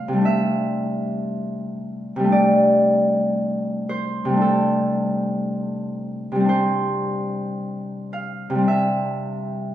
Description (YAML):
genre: classical, solo harp piece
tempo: 58 BPM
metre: 4/4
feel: rubato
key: C major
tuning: A4 = 442 Hz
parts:
  - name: Celtic harp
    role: solo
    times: 0.0-9.7 s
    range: C3 to F5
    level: -19 LUFS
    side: equal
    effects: none
room: wet recital hall reverb, RT60 1.4 s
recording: minimal, uncompressed stereo recording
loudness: -19 LUFS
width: side -12 dB against mid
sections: 0.0-9.7 A section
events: none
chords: 0.0 C69; 2.3 Am7/C; 6.5 Cadd9